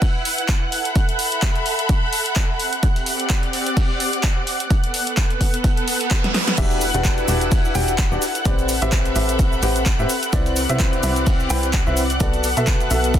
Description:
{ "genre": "piano house", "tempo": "128 BPM", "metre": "4/4", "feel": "swing 56% on 16ths", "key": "unclear", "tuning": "A4 = 444 Hz", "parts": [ { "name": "analog string pad", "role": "sustained chords", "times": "0.0-13.2 s", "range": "F#5 to F#6", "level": "-27 LUFS", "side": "right 2 dB", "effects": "ensemble chorus, sidechain pumping" }, { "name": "dusty soul sampler-style drum kit", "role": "drums", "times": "0.0-13.2 s", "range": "hi-hat, snare drum", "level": "-36 LUFS", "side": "right 2 dB", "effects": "none" }, { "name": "electronic kick drum", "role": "drums", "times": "0.0-13.2 s", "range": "none", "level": "-19 LUFS", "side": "equal", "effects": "none" }, { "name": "punchy analog drum machine", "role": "drums", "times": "0.0-13.2 s", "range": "cabasa, crash cymbal, handclaps, hi-hat, snare drum", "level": "-25 LUFS", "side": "left 1 dB", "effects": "none" }, { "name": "bright studio string section", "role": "texture", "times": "0.0-13.2 s", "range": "B3 to B5", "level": "-26 LUFS", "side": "equal", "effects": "sidechain pumping" }, { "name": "reverse cymbal", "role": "sound effects", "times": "5.9-6.6 s", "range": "none", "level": "-28 LUFS", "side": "right 5 dB", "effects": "none" }, { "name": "clear concert grand piano", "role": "riff", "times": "6.6-13.2 s", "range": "B3 to G5", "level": "-23 LUFS", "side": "left 1 dB", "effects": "sidechain pumping, tape echo" }, { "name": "plucky analog bass", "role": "bass", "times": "6.6-13.2 s", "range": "E1 to C2", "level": "-23 LUFS", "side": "equal", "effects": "sidechain pumping" } ], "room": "light reverb", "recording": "dense, heavily limited modern master", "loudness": "-17 LUFS", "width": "side -10 dB against mid", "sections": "0.0-13.2 A section", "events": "reverse cymbal 5.9-6.6; drum fill 6.2-6.6", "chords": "0.0 Esus2; 6.6 Em9; 8.2 Am11; 10.1 Cmaj9; 12.2 Bm7", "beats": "0.02 0.49 | 0.95 1.42 1.89 2.36 | 2.83 3.30 3.77 4.24 | 4.71 5.17 5.64 6.11 | 6.58 7.05 7.52 7.99 | 8.46 8.92 9.39 9.86 | 10.33 10.80 11.27 11.74 | 12.21 12.67 13.14" }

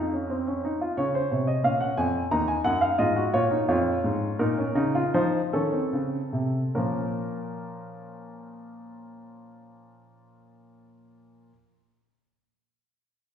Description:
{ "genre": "classical, baroque-style 3-part fugue for grand piano", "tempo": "72-90 BPM", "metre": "4/4", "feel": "straight", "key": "Bb minor", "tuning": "A4 = 439 Hz", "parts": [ { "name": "warm baby grand piano", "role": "solo", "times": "0.0-11.5 s", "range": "Eb2 to Bb5", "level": "-24 LUFS", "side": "equal", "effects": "none" } ], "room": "wet recital hall reverb, RT60 1.6 s", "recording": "heard from further back in the room", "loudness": "-23 LUFS", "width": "side -8 dB against mid", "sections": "1.0-6.7 A section; 6.7-10.0 B section", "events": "slowing down 0.0-6.7", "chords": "0.0 F5; 1.0 Bbm; 2.3 Ebm11; 3.7 Bbm/F; 5.1 F7; 6.7 Bbm", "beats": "0.31 | 0.98 1.65 2.32 3.00 | 3.69 4.40 5.15 5.93 | 6.75 7.57 8.39 9.21" }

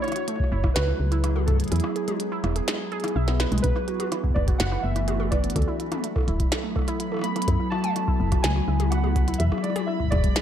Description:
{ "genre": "IDM", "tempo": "125 BPM", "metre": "4/4", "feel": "straight", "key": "unclear", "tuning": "A4 = 441 Hz", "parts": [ { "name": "warbly lo-fi synth keys", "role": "melody", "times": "0.0-10.4 s", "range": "G#4 to B5", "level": "-31 LUFS", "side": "right 1 dB", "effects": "chorus, ping-pong delay" }, { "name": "glassy FM pad", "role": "sustained chords", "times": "0.0-10.4 s", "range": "E3 to A4", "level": "-30 LUFS", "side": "left 2 dB", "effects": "ensemble chorus, built-in reverb" }, { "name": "warbly dusty pluck", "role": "arpeggios", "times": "0.0-10.4 s", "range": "G#3 to E5", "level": "-32 LUFS", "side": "right 4 dB", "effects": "chorus, tape echo" }, { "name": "glitchy drum kit", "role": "drums", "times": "0.0-10.4 s", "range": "hi-hat, rim click, snare drum, toms", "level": "-30 LUFS", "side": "left 1 dB", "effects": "overdrive" }, { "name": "electronic kick drum", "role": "drums", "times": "0.4-10.3 s", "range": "none", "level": "-25 LUFS", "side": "equal", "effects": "none" }, { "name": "woody FM bass", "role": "bass", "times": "0.5-10.3 s", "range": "D1 to F#2", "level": "-24 LUFS", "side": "equal", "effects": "none" }, { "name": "bubbling stepped-filter texture", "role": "texture", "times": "4.0-10.4 s", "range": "B5", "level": "-42 LUFS", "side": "right 6 dB", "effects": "chorus, built-in reverb" } ], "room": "light reverb, digital ambience", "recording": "dark, warm production", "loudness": "-22 LUFS", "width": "side -10 dB against mid", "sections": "0.0-10.4 A section", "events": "kick drops out 1.7-3.6; drum fill 3.3-3.6", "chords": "0.0 F#7(no3); 1.7 E; 3.6 Bm; 5.6 Dsus2; 7.5 F#m7; 9.4 E", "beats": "0.28 0.76 1.24 | 1.72 2.20 2.68 3.16 | 3.64 4.12 4.60 5.08 | 5.56 6.04 6.52 7.00 | 7.48 7.96 8.44 8.92 | 9.40 9.88 10.36" }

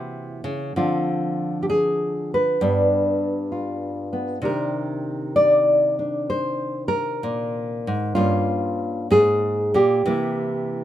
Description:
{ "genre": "solo jazz", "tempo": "64 BPM", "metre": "4/4", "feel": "swing 67% on 8ths, rubato", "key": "C minor", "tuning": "A4 = 440 Hz", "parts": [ { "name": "nylon-string guitar", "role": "solo", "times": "0.0-10.8 s", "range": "G2 to D5", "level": "-20 LUFS", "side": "equal", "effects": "none" } ], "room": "light reverb", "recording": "minimal, uncompressed stereo recording", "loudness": "-20 LUFS", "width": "side -12 dB against mid", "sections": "0.0-10.8 A section", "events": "none", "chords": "0.0 F#7#11/B#; 0.8 Dm7b5; 2.6 G7; 4.4 Cm9; 8.2 Gm7b5; 10.1 C7", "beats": "| 0.75 1.68 2.60 3.52 | 4.42 5.34 6.28 7.22 | 8.15 9.10 10.07" }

